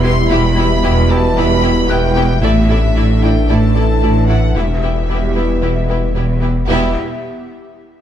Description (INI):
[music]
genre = cinematic, hybrid orchestral and electronic film score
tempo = 113 BPM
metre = 4/4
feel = straight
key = E minor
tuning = A4 = 440 Hz
[part]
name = rich chamber violin section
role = melody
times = 0.0-7.0 s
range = E5 to C6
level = -22 LUFS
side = left 2 dB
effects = none
[part]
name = clear symphonic violin section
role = second line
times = 0.0-7.0 s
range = G4 to D5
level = -26 LUFS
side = left 2 dB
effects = none
[part]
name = clear symphonic viola section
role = accompaniment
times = 0.0-7.0 s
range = A3 to E4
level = -24 LUFS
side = equal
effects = none
[part]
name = airy breathy pad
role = sustained chords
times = 0.0-7.0 s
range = B3 to E5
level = -22 LUFS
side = equal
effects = chorus
[part]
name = dark trombone section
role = sustained chords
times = 0.0-6.9 s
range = A2 to E3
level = -22 LUFS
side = right 4 dB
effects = none
[part]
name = mellow French horn section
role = sustained chords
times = 0.0-6.9 s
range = G3 to E4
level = -23 LUFS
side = left 2 dB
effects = none
[part]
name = clear symphonic cello section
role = bass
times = 0.0-7.0 s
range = E2 to A2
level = -20 LUFS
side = right 2 dB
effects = none
[part]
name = clear symphonic double bass section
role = bass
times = 0.0-7.0 s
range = E1 to A1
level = -20 LUFS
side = right 3 dB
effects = none
[part]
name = warm sub bass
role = bass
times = 0.0-7.0 s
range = E1 to A1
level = -17 LUFS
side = left 1 dB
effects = none
[part]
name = felt-muted upright piano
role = texture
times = 0.0-6.7 s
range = B3 to F#6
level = -28 LUFS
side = left 4 dB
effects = none
[sound]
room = light reverb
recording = none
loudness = -12 LUFS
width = side -10 dB against mid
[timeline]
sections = 0.0-6.7 A section; 6.7-8.0 B section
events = none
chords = 0.0 Em; 2.4 Asus4; 4.6 Em